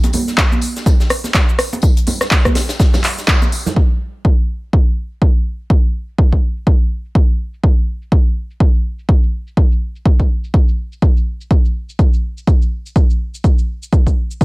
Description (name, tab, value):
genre	house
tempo	124 BPM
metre	4/4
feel	swing 58% on 16ths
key	none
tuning	none
part	big rock drum kit	drums	0.0-3.8 s	hi-hat, snare drum, tambourine	-26 LUFS	left 2 dB	sidechain pumping on hats, high-pass filter on hats, high-pass filter on snare, sidechain pumping on perc, high-pass filter on perc, high-pass filter on room
part	deep house drum kit	drums	0.0-14.4 s	cabasa, handclaps, hi-hat, rim click	-18 LUFS	equal	low-pass filter on perc, low-pass filter on hats, low-pass filter on snare, low-pass filter on room
part	congas	percussion	0.0-3.7 s	none	-22 LUFS	right 2 dB	none
part	electronic kick drum	drums	0.4-14.4 s	none	-12 LUFS	equal	none
room	studio reverb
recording	none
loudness	-13 LUFS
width	side -23 dB against mid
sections	0.0-3.8 A section; 3.8-14.4 B section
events	band accent 3.3; filter sweep on drum 3.8-14.4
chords	none